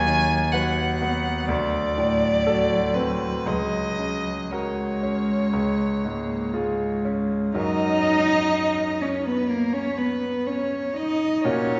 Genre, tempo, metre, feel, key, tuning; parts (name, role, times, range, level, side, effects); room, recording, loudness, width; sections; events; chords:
classical, slow romantic movement for piano trio; 57-64 BPM; 4/4; rubato; F# major; A4 = 442 Hz
rich violin; melody; 0.0-11.8 s; A#4 to G#5; -29 LUFS; equal
dark cello; second line; 0.0-11.8 s; F#3 to D#4; -27 LUFS; equal
bright concert grand piano; accompaniment; 0.0-11.8 s; C#2 to B4; -29 LUFS; equal
wet scoring stage reverb, RT60 1.8 s; recorded in a church or concert hall, nothing above 7.6 kHz; -24 LUFS; mono
0.0-7.6 A section; 7.6-11.8 B section
0.0 B/D#; 1.5 D7; 3.5 F#/C#; 5.5 C#; 7.6 F#